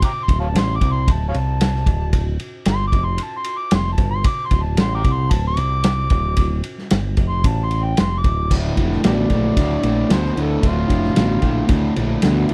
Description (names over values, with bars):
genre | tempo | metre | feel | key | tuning
blues rock power trio and southern rock | 113 BPM | 4/4 | straight | D minor | A4 = 440 Hz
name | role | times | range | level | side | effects
overdriven harmonica | melody | 0.0-11.7 s | F4 to D6 | -27 LUFS | equal | none
vintage drum kit | drums | 0.0-12.5 s | crash cymbal, kick drum, ride cymbal, snare drum | -22 LUFS | equal | none
growling picked electric bass | bass | 0.3-12.5 s | D1 to D2 | -23 LUFS | equal | overdrive
crunchy overdriven guitar | riff | 8.5-12.5 s | D2 to B2 | -21 LUFS | equal | none
room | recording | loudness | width
little or no reverb | none | -19 LUFS | mono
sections
0.0-8.5 A section; 8.5-12.5 B section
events
harmonica solo 0.0-8.5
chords
0.0 Dm